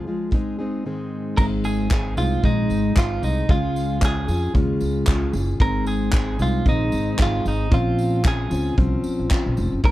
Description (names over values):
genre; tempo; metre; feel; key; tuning
acoustic pop; 114 BPM; 4/4; swing 55% on 16ths; unclear; A4 = 439 Hz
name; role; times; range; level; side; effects
fingerpicked plugged-in steel-string acoustic guitar; accompaniment; 0.0-9.9 s; Ab2 to Ab4; -24 LUFS; left 1 dB; none
loose indie drum kit; drums; 0.3-9.9 s; crash cymbal, handclaps, kick drum, tambourine; -21 LUFS; equal; none
clean electric guitar; melody; 1.4-9.9 s; Eb4 to Bb4; -26 LUFS; right 3 dB; none
upright bass; bass; 1.4-9.9 s; F1 to F2; -24 LUFS; equal; none
room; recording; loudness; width
little or no reverb; none; -19 LUFS; side -15 dB against mid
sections
0.0-1.4 A section; 1.4-9.9 B section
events
break 0.8-1.4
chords
0.3 Ab; 3.5 Db; 5.6 Ab; 7.7 Bbmadd9